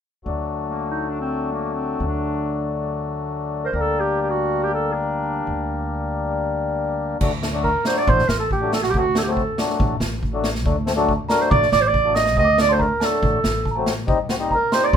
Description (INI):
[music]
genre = klezmer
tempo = 139 BPM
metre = 4/4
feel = straight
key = D phrygian dominant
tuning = A4 = 440 Hz
[part]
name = mellow accordion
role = accompaniment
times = 0.2-15.0 s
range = F#3 to F#4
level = -24 LUFS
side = left 4 dB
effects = none
[part]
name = upright bass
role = bass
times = 0.3-15.0 s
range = A1 to G2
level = -26 LUFS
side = equal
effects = none
[part]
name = mellow clarinet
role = melody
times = 0.7-15.0 s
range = Bb3 to Eb5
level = -21 LUFS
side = right 3 dB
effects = none
[part]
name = street-band drum kit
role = drums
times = 7.2-15.0 s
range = crash cymbal, kick drum, snare drum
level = -24 LUFS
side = equal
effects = none
[part]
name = small celesta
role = second line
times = 7.6-15.0 s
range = F#5 to Eb6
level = -24 LUFS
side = right 1 dB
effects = none
[sound]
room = moderate studio ambience, RT60 0.5 s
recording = minimal, uncompressed stereo recording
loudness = -19 LUFS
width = side -8 dB against mid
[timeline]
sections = 0.3-7.2 A section; 7.2-15.0 B section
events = none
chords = 0.3 D; 3.7 Gm/D; 7.2 D; 14.1 Cm